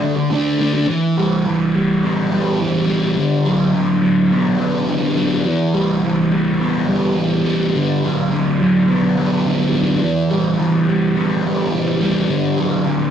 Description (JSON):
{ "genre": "rock", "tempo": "105 BPM", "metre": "4/4", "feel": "straight", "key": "E minor", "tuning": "A4 = 439 Hz", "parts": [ { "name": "fuzz guitar", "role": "solo", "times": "0.0-13.1 s", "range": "D3 to D4", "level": "-15 LUFS", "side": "equal", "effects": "distortion, phaser" } ], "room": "moderate stone room reverb, RT60 1.0 s", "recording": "rough rehearsal-room recording, tube saturation", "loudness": "-15 LUFS", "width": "side -9 dB against mid", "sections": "0.9-13.1 A section", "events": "none", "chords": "0.0 D5; 0.9 Em; 3.2 Bm/D; 5.5 Em; 7.7 Bm/D; 10.0 Em; 12.3 Bm/D" }